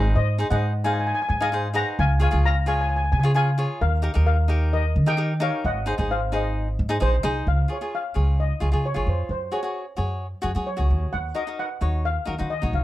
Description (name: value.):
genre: calypso.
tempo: 131 BPM.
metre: 4/4.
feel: straight.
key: Db major.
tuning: A4 = 440 Hz.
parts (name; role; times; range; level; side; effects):
cavaquinho; accompaniment; 0.0-12.8 s; Eb4 to Eb5; -28 LUFS; left 1 dB; none.
upright bass; bass; 0.0-12.8 s; Ab1 to Gb3; -22 LUFS; equal; none.
steel pan; melody; 0.2-12.8 s; Bb4 to Bb5; -27 LUFS; left 2 dB; none.
room: light reverb.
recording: dark, warm production.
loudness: -21 LUFS.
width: side -15 dB against mid.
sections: 0.0-7.5 A section; 7.5-12.8 B section.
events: none.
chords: 0.0 Ab; 2.0 Db; 3.8 Eb; 5.6 Ab7; 7.5 Db; 9.3 Gbsus2; 11.1 Ebmadd9.